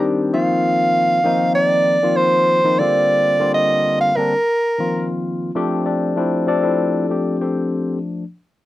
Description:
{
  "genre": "jazz",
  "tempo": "98 BPM",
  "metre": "4/4",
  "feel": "straight",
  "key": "F major from 5.6 s",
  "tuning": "A4 = 440 Hz",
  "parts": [
    { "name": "clear soprano saxophone", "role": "melody", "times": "0.0-5.1 s", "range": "Bb4 to F5", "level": "-16 LUFS", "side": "right 1 dB", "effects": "none" },
    { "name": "barky tine electric piano", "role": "accompaniment", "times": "0.0-8.2 s", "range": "D3 to D5", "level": "-19 LUFS", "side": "left 2 dB", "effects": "phaser" }
  ],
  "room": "light reverb",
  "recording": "dry, close 1970s-style studio recording",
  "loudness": "-15 LUFS",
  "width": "side -15 dB against mid",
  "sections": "0.0-5.6 A section; 5.6-8.7 B section",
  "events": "none",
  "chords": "0.3 F7sus4; 2.8 C9sus4; 4.3 F7sus4; 5.6 F69"
}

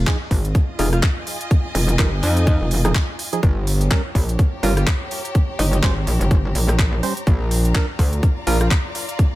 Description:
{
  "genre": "bass house",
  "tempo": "125 BPM",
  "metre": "4/4",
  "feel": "swing 57% on 16ths",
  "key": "F minor",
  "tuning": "A4 = 436 Hz",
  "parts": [
    { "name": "metallic wobble bass", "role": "bass", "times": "0.0-8.7 s", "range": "F1 to F2", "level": "-19 LUFS", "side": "equal", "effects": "chorus, tube saturation, sidechain pumping" },
    { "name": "clear studio string section", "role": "texture", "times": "0.0-9.4 s", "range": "F4 to Bb5", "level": "-31 LUFS", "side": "equal", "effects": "sidechain pumping" },
    { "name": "percussive organ stab", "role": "stabs", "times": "0.1-8.6 s", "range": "F3 to C5", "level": "-27 LUFS", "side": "right 3 dB", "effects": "chorus, sidechain pumping, ping-pong delay" },
    { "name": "electronic kick drum", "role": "drums", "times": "0.1-9.3 s", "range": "none", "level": "-18 LUFS", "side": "equal", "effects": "none" },
    { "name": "garage drum kit", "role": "drums", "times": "0.1-9.3 s", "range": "handclaps, hi-hat, rim click", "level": "-26 LUFS", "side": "equal", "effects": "none" },
    { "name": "clear alto saxophone", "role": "melody", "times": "0.8-8.7 s", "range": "Eb4 to F4", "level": "-27 LUFS", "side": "left 1 dB", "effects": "ping-pong delay" }
  ],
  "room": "little or no reverb",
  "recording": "none",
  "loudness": "-16 LUFS",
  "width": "side -17 dB against mid",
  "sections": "0.0-9.4 A section",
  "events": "none",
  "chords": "0.0 Fm7; 3.4 Gdim; 7.3 Bb"
}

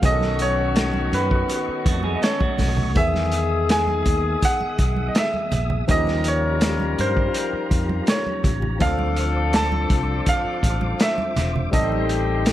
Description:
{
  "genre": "lush 1970s-style soul",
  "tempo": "82 BPM",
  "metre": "4/4",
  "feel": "straight",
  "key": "unclear",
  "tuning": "A4 = 443 Hz",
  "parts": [
    { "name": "barky tine electric piano", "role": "accompaniment", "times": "0.0-12.5 s", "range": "D#3 to A4", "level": "-29 LUFS", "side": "left 3 dB", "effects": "overdrive, wide subtle chorus" },
    { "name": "tonewheel organ", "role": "sustained chords", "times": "0.0-12.5 s", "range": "F4 to D#6", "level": "-33 LUFS", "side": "equal", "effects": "slow rotary speaker, overdrive, chorus vibrato" },
    { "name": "mellow horn section", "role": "stabs", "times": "0.0-12.5 s", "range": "D#3 to Bb4", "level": "-28 LUFS", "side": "left 6 dB", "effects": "none" },
    { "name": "fingered electric bass", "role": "bass", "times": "0.0-12.5 s", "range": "E1 to G2", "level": "-24 LUFS", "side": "equal", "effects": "none" },
    { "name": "vintage drum kit", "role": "drums", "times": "0.0-12.5 s", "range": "hi-hat, kick drum, snare drum", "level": "-23 LUFS", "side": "equal", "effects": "none" },
    { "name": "congas", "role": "percussion", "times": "0.0-12.5 s", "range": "none", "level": "-31 LUFS", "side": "right 3 dB", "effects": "none" },
    { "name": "clear grand piano", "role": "melody", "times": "0.1-12.5 s", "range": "B4 to A5", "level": "-25 LUFS", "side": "right 2 dB", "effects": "tape echo" },
    { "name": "electric guitar through a small old amp", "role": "riff", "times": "1.9-2.9 s", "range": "A3 to A4", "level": "-29 LUFS", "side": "right 4 dB", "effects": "spring reverb" }
  ],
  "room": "small room reverb",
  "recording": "none",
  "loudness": "-19 LUFS",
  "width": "side -13 dB against mid",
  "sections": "0.0-12.5 A section",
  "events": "none",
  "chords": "0.0 B9; 3.0 Emaj7; 5.9 Eb9; 8.8 Dm7; 11.7 Am7b5"
}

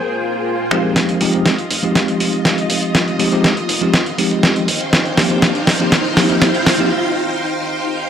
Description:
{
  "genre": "nu-disco, nu disco",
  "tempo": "121 BPM",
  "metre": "4/4",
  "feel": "straight",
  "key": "F minor",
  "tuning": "A4 = 441 Hz",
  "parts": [
    { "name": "breathy bright jazz flute", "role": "melody", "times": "0.0-0.7 s", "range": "C5", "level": "-29 LUFS", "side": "right 1 dB", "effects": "vintage 12-bit sampler grit, analog delay" },
    { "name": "string machine, full ensemble", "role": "sustained chords", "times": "0.0-8.1 s", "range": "Bb3 to G5", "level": "-21 LUFS", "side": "equal", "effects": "phaser, ensemble chorus" },
    { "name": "swell and riser", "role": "sound effects", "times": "0.1-6.9 s", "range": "none", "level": "-24 LUFS", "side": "right 1 dB", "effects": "none" },
    { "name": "bell-like tine electric piano", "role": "accompaniment", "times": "0.7-6.9 s", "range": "F3 to G4", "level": "-18 LUFS", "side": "equal", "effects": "fast stereo tremolo, low-pass filter, analog delay" },
    { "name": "dusty soul sampler-style drum kit", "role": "drums", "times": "0.7-6.9 s", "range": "finger snaps, hi-hat, snare drum", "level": "-16 LUFS", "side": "equal", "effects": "none" },
    { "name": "fingered electric bass", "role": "bass", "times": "1.0-6.8 s", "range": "F1 to F2", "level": "-29 LUFS", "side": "equal", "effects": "none" }
  ],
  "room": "light reverb",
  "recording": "dry, gritty hardware recording",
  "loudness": "-13 LUFS",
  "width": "side -8 dB against mid",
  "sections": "1.0-8.1 A section",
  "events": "swell 0.1-1.0; build-up 1.0-8.1; drum fill 1.0-6.9; riser 1.0-6.9; filter sweep on tine electric piano 1.0-8.1; break 6.9-8.1",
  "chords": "0.0 Bb9sus4; 1.0 Fm7; 4.7 Eb69"
}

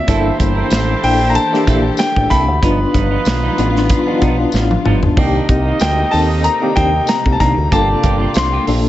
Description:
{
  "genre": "polished 1980s jazz-funk pop",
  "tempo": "94 BPM",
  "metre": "4/4",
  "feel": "swing 54% on 16ths",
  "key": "unclear",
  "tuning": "A4 = 439 Hz",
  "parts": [
    { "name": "clear concert grand piano", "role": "melody", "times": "0.0-8.9 s", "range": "E5 to C6", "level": "-18 LUFS", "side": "left 2 dB", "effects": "none" },
    { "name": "tine electric piano", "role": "accompaniment", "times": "0.0-8.9 s", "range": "Bb3 to A5", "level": "-19 LUFS", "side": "left 3 dB", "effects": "medium tremolo, lush chorus" },
    { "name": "warm studio string section", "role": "sustained chords", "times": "0.0-8.9 s", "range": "C3 to A4", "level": "-25 LUFS", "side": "left 1 dB", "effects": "none" },
    { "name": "warm horn section", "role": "second line", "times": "0.1-8.7 s", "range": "Eb4 to Eb5", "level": "-24 LUFS", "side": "right 3 dB", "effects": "none" },
    { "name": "semi-hollow electric guitar", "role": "riff", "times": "0.1-8.9 s", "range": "Eb3 to Bb4", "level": "-24 LUFS", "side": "right 5 dB", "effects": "wide subtle chorus" },
    { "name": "fingered electric bass with an envelope filter", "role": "bass", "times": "0.1-8.9 s", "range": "G1 to Eb2", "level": "-17 LUFS", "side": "equal", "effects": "none" },
    { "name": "modern studio drum kit", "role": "drums", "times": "0.1-8.8 s", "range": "hi-hat, kick drum, snare drum, splash cymbal, toms", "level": "-18 LUFS", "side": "equal", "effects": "gated reverb" },
    { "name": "tambourine", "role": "percussion", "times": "0.7-8.5 s", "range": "none", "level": "-30 LUFS", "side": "left 7 dB", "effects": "none" }
  ],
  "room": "light reverb, small room ambience",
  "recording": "nothing above 7.9 kHz",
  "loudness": "-12 LUFS",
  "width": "side -14 dB against mid",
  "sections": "0.0-8.9 A section",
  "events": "tine electric piano fill 4.2-5.2; drum fill 4.5-5.2",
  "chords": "0.1 Gm69; 2.6 G7b13; 5.2 Cm9; 7.7 Gm7"
}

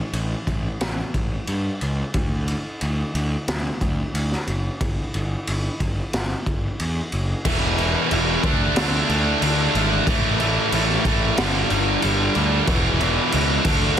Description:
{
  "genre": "quiet-loud alternative rock",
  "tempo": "91 BPM",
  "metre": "4/4",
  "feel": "straight",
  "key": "E minor from 7.5 s",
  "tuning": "A4 = 440 Hz",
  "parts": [
    { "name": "fuzz picked electric bass", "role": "bass", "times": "0.1-14.0 s", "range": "E1 to G2", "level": "-24 LUFS", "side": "equal", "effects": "overdrive" },
    { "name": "raw garage drum kit", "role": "drums", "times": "0.1-14.0 s", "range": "crash cymbal, kick drum, ride cymbal, snare drum", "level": "-24 LUFS", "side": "equal", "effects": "none" },
    { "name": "heavy high-gain guitar", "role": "riff", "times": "7.5-14.0 s", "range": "E2 to D4", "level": "-20 LUFS", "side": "right 1 dB", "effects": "distortion" }
  ],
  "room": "small room ambience",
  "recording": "dense, heavily limited modern master",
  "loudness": "-19 LUFS",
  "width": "side -9 dB against mid",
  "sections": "0.0-7.5 A section; 7.5-14.0 B section",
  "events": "none",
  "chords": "0.0 N.C.; 7.5 E5; 8.4 D5; 10.1 A5; 11.4 G5; 12.7 E5"
}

